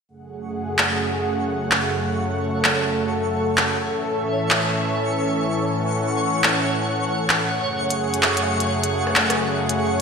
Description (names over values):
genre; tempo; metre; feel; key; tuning
IDM; 129 BPM; 4/4; swing 62% on 16ths; F# minor; A4 = 440 Hz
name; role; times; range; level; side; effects
warm analog pad; sustained chords; 0.1-10.0 s; F#2 to F#5; -22 LUFS; equal; chorus
twinkling granular texture; texture; 1.0-10.0 s; C#5; -28 LUFS; equal; built-in reverb, wide subtle chorus
glitchy drum kit; drums; 0.8-9.8 s; handclaps, hi-hat, rim click; -22 LUFS; equal; gated reverb
room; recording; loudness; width
wet lush hall reverb, RT60 2.0 s; bright 1980s-style digital production; -19 LUFS; side -5 dB against mid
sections
0.1-10.0 A section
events
none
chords
0.1 F#madd9; 3.8 A; 7.5 F#madd9